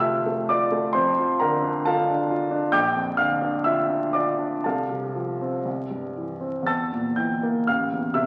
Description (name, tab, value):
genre	classical, romantic character piece for solo piano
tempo	58-69 BPM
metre	2/4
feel	rubato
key	F major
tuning	A4 = 444 Hz
part	warm grand piano	solo	0.0-8.3 s	A1 to A6	-24 LUFS	equal	none
room	wet recital hall reverb, RT60 1.7 s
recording	very old 78 rpm record, vinyl crackle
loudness	-24 LUFS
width	mono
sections	0.0-8.3 A section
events	none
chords	0.0 F; 1.0 Dm/F; 2.7 Gm7/Bb; 4.6 F/C; 5.7 C; 6.7 Edim; 7.7 Am